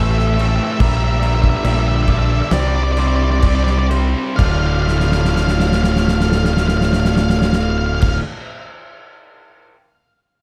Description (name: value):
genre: post-rock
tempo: 62-74 BPM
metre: 4/4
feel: straight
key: D minor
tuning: A4 = 440 Hz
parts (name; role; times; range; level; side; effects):
- octave-fuzz lead guitar; melody; 0.0-8.2 s; D5 to F5; -25 LUFS; equal; distortion, digital delay
- warm symphonic string section; sustained chords; 0.0-8.2 s; A3 to D5; -33 LUFS; equal; none
- electric guitar at the edge of break-up; arpeggios; 0.0-8.2 s; A4 to D5; -34 LUFS; equal; digital delay
- distorted electric guitar; riff; 0.0-8.2 s; D2 to C4; -26 LUFS; equal; overdrive
- tight distorted guitar; riff; 0.0-8.2 s; D2 to F4; -27 LUFS; equal; distortion
- growling fingered electric bass; bass; 0.0-8.2 s; D1 to C2; -20 LUFS; equal; overdrive
- loose indie drum kit; drums; 0.2-9.7 s; crash cymbal, kick drum, snare drum; -23 LUFS; equal; none
room: light reverb, small room ambience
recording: none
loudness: -16 LUFS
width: mono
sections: 0.0-4.4 A section; 4.4-8.3 B section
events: slowing down 0.0-4.4; drum fill 4.9-8.0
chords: 0.0 Am7; 0.8 Gm7/Bb; 2.5 Cadd9; 4.4 Dm